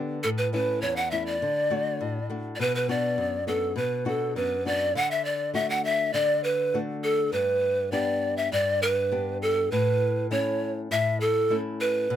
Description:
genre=andean folk, Andean ensemble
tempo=101 BPM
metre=2/4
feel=straight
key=unclear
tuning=A4 = 440 Hz
part: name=nylon-string guitar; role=accompaniment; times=0.0-12.2 s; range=E2 to G4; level=-30 LUFS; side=left 2 dB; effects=none
part: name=breathy mellow pan flute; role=melody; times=0.2-12.2 s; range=A4 to F#5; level=-24 LUFS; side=equal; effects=none
room=light reverb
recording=none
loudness=-24 LUFS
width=side -10 dB against mid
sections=0.0-5.0 A section; 5.0-12.2 B section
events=none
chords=0.2 A; 1.4 D; 2.6 Bm; 5.0 D; 7.3 G; 9.7 A

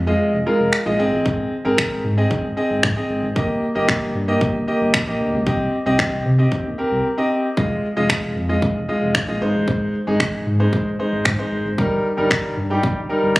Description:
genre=dance-pop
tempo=114 BPM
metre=4/4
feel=straight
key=unclear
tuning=A4 = 439 Hz
part: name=round analog bass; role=bass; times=0.0-13.3 s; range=F1 to C3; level=-23 LUFS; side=equal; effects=sidechain pumping
part: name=clear concert grand piano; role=accompaniment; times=0.1-13.4 s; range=G3 to Eb5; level=-20 LUFS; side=equal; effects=sidechain pumping
part: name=pop drum kit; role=drums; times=0.7-13.4 s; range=finger snaps, kick drum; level=-20 LUFS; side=equal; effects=none
room=light reverb, digital ambience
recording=recorded on a phone in the room, club reverb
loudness=-17 LUFS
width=side -20 dB against mid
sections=0.0-13.4 A section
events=drums muted 7.0-7.6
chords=0.0 Fm7; 1.0 Ab; 3.4 Eb/G; 5.5 Cm; 7.6 Fm7; 9.4 Ab; 11.8 Eb/G

